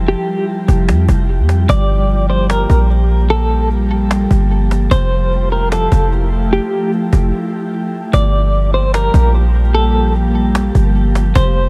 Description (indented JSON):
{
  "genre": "hip hop, atmospheric cloud-rap",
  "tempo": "149 BPM",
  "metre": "4/4",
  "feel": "half-time",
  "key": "G dorian",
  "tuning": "A4 = 440 Hz",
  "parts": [
    { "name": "glassy FM pad", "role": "sustained chords", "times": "0.0-11.7 s", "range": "F3 to G4", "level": "-22 LUFS", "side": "equal", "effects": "ensemble chorus, built-in reverb" },
    { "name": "warm 808-style bass", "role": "bass", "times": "0.0-11.7 s", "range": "F1 to F2", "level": "-16 LUFS", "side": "equal", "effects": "none" },
    { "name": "clean electric guitar", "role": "melody", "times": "0.1-11.7 s", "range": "G4 to D5", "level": "-22 LUFS", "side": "equal", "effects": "tremolo, tape echo" },
    { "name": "cajon", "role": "drums", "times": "0.7-11.4 s", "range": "none", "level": "-24 LUFS", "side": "equal", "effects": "none" }
  ],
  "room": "digital ambience",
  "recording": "none",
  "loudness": "-14 LUFS",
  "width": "mono",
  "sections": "0.0-8.1 A section; 8.1-11.7 B section",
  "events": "break 0.0-1.7, 7.3-8.1",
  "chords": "0.0 Fmaj7sus2; 1.7 Gm7; 4.9 Fmaj9; 8.1 Gm7"
}